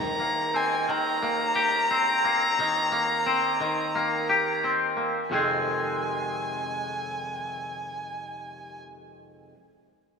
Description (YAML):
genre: rock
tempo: 88 BPM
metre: 4/4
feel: straight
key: F minor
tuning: A4 = 441 Hz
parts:
  - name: muted violin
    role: melody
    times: 0.0-8.8 s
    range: Ab5 to Bb5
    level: -28 LUFS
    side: equal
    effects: analog delay
  - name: twangy electric guitar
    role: arpeggios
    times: 0.0-9.6 s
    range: F2 to Ab4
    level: -26 LUFS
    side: left 1 dB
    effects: wide subtle chorus, analog delay
room: wet concert hall reverb, RT60 1.8 s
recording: none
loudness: -23 LUFS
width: side -5 dB against mid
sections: 0.0-5.3 A section; 5.3-8.0 B section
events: none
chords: 0.0 Cm7/Eb; 5.3 Fm7